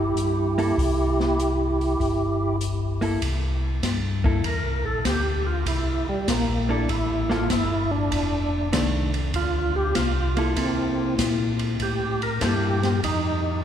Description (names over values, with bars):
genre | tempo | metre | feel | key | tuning
soul jazz organ trio | 98 BPM | 4/4 | swing 68% on 8ths | C mixolydian | A4 = 440 Hz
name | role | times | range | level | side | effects
percussive tonewheel organ | melody | 0.0-13.6 s | G3 to Bb4 | -26 LUFS | right 2 dB | slow rotary speaker, overdrive, chorus vibrato
mellow tonewheel organ | bass | 0.0-13.6 s | F1 to C3 | -26 LUFS | left 1 dB | slow rotary speaker
open jazz drum kit | drums | 0.2-13.2 s | hi-hat, kick drum, ride cymbal, snare drum | -28 LUFS | left 1 dB | none
vintage hollow-body jazz guitar | accompaniment | 0.6-12.8 s | Eb3 to A4 | -30 LUFS | left 1 dB | none
room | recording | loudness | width
wet cathedral reverb, RT60 5.7 s | recorded in a church or concert hall | -21 LUFS | side -9 dB against mid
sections
0.0-3.2 A section; 3.2-13.6 B section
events
tonewheel organ solo 3.2-13.6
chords
0.0 C; 3.2 C13; 8.1 F6; 10.6 C6; 13.0 F7(no3)